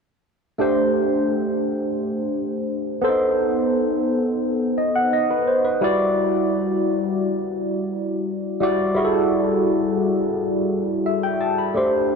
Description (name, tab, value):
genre	soul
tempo	86 BPM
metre	4/4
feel	straight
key	E minor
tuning	A4 = 440 Hz
part	overdriven tine electric piano	solo	0.6-12.2 s	G3 to B5	-19 LUFS	equal	phaser
room	moderate lush hall reverb, RT60 3.4 s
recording	none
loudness	-19 LUFS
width	side -5 dB against mid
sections	0.6-11.7 A section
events	none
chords	0.6 D7sus4; 3.0 B7b9; 5.8 Em9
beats	| 0.59 1.28 1.98 2.68 | 3.38 4.08 4.78 5.47 | 6.17 6.87 7.57 8.26 | 8.96 9.66 10.36 11.05 | 11.75